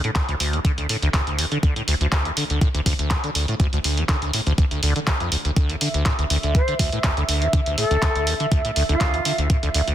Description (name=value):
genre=acid house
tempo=122 BPM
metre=4/4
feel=swing 53% on 16ths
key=D minor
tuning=A4 = 440 Hz
part: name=liquid acid bass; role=riff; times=0.0-9.9 s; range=D2 to D3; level=-23 LUFS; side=equal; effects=overdrive, analog chorus, sidechain pumping, tape echo
part: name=punchy analog drum machine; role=drums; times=0.0-9.9 s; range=handclaps, hi-hat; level=-26 LUFS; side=equal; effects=none
part: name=electronic kick drum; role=drums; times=0.2-9.6 s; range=none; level=-21 LUFS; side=equal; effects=none
part: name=warm analog pad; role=sustained chords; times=5.6-9.9 s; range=E5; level=-28 LUFS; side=right 3 dB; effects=chorus, sidechain pumping
part: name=concert flute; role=melody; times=6.5-9.4 s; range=F4 to C5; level=-26 LUFS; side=left 1 dB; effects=ping-pong delay
room=light reverb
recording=dense, heavily limited modern master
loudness=-19 LUFS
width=side -11 dB against mid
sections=0.0-9.9 A section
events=none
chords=0.0 D5